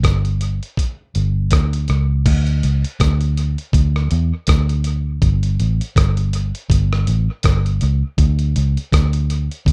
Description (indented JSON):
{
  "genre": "roots reggae",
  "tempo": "81 BPM",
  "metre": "4/4",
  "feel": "swing 57% on 16ths",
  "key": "unclear",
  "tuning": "A4 = 440 Hz",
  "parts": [
    { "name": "vintage muted fingered electric bass", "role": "bass", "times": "0.0-9.7 s", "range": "G1 to E2", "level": "-19 LUFS", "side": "equal", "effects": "none" },
    { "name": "dusty soul sampler-style drum kit", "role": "drums", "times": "0.0-9.7 s", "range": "crash cymbal, hi-hat, kick drum, rim click", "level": "-21 LUFS", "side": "equal", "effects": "none" }
  ],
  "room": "little or no reverb",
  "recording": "rough home demo mix",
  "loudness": "-18 LUFS",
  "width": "mono",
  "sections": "0.0-2.3 A section; 2.3-9.7 B section",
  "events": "none",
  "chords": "none",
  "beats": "0.03 0.78 1.51 | 2.26 3.00 3.74 4.48 | 5.22 5.96 6.70 7.44 | 8.18 8.92 9.66"
}